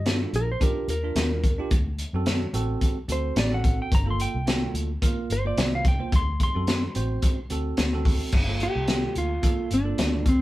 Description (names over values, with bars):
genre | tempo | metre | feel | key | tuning
straight-eighth soul blues | 109 BPM | 4/4 | swing 55% on 16ths | G minor | A4 = 440 Hz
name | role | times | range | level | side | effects
clean lap steel guitar | melody | 0.0-10.4 s | C4 to C6 | -29 LUFS | equal | none
vintage muted fingered electric bass | bass | 0.0-10.4 s | G1 to G2 | -28 LUFS | equal | none
bell-like tine electric piano | accompaniment | 0.1-10.4 s | Bb3 to C5 | -32 LUFS | right 4 dB | none
crunchy breakbeat drum kit | drums | 0.1-10.4 s | crash cymbal, hi-hat, kick drum, snare drum | -24 LUFS | equal | none
room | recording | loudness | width
light reverb | band playing live in one room | -22 LUFS | side -16 dB against mid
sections
0.0-8.3 A section; 8.3-10.4 B section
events
electric slide guitar solo 0.0-8.3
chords
0.0 Ebmaj7; 1.7 D7; 3.9 Gm9; 6.1 D7; 8.3 Gm9